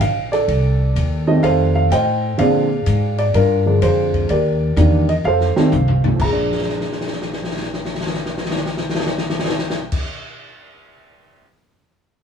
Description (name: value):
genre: jazz piano trio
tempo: 126 BPM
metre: 4/4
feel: swing 67% on 8ths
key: Bb mixolydian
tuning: A4 = 440 Hz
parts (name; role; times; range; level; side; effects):
- dark upright piano; melody; 0.0-10.1 s; Bb2 to Bb5; -18 LUFS; right 2 dB; none
- upright bass; bass; 0.0-10.0 s; Bb1 to Bb2; -19 LUFS; left 1 dB; none
- open jazz drum kit; drums; 0.0-11.5 s; crash cymbal, hi-hat, kick drum, ride cymbal, snare drum, toms; -24 LUFS; left 3 dB; none
room: light reverb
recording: band playing live in one room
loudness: -15 LUFS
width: side -7 dB against mid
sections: 0.0-6.2 A section; 6.2-10.0 B section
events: drum fill 5.2-6.2, 6.4-9.9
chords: 0.5 F7; 2.4 Bb7; 4.3 Ebmaj7; 5.2 F; 6.2 Bb7